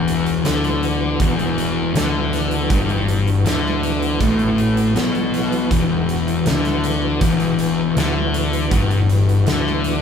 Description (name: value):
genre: stoner and doom metal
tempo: 80 BPM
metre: 4/4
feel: straight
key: E minor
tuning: A4 = 440 Hz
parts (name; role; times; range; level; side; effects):
- percussive tonewheel organ; sustained chords; 0.0-10.0 s; E3 to F#4; -26 LUFS; right 6 dB; slow rotary speaker, overdrive, chorus vibrato
- thick fuzz guitar; riff; 0.0-10.0 s; E2 to D3; -18 LUFS; left 4 dB; distortion
- fuzz picked electric bass; bass; 0.0-10.0 s; E1 to D2; -25 LUFS; right 2 dB; overdrive
- big rock drum kit; drums; 0.1-10.0 s; hi-hat, kick drum, snare drum; -24 LUFS; right 2 dB; none
room: moderate large studio reverb, RT60 1.2 s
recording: band playing live in one room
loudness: -16 LUFS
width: side -7 dB against mid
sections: 0.0-10.0 A section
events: none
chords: 0.0 Em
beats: 0.45 1.20 1.95 | 2.70 3.45 4.20 4.95 | 5.71 6.46 7.21 7.96 | 8.71 9.46